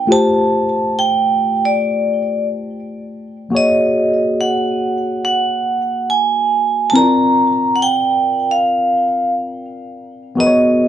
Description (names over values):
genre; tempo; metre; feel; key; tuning
R&B; 70 BPM; 4/4; swing 59% on 16ths; unclear; A4 = 440 Hz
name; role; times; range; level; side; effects
vibraphone with hard mallets; melody; 0.0-10.9 s; D5 to Bb5; -15 LUFS; right 2 dB; none
tine electric piano; accompaniment; 0.0-10.9 s; A3 to D5; -18 LUFS; left 2 dB; phaser
room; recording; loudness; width
light reverb, small room ambience; nothing above 10.3 kHz; -13 LUFS; side -10 dB against mid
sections
0.0-10.4 A section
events
none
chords
0.1 G9sus4; 3.5 Ab9sus4; 6.9 C9sus4; 10.4 Abm11